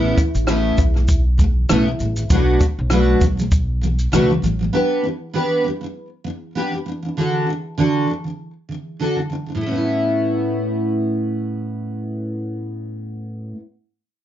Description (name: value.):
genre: acoustic pop.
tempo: 98 BPM.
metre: 4/4.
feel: swing 55% on 16ths.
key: A mixolydian.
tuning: A4 = 438 Hz.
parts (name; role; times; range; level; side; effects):
picked steel-string acoustic guitar; accompaniment; 0.0-13.6 s; A2 to B4; -20 LUFS; equal; double-tracked left and right.
upright bass; bass; 0.0-4.7 s; A1 to C#2; -19 LUFS; equal; none.
compact cocktail drum kit; drums; 0.2-4.6 s; kick drum, rim click, shaker; -19 LUFS; equal; none.
room: moderate studio reverb, RT60 0.5 s.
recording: dark, warm production, nothing above 7.5 kHz.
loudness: -17 LUFS.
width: side -11 dB against mid.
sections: 0.0-9.6 A section; 9.6-12.0 B section.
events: none.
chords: 0.0 Aadd9; 2.3 Bm7; 4.7 G/B; 7.2 D; 9.6 Aadd9.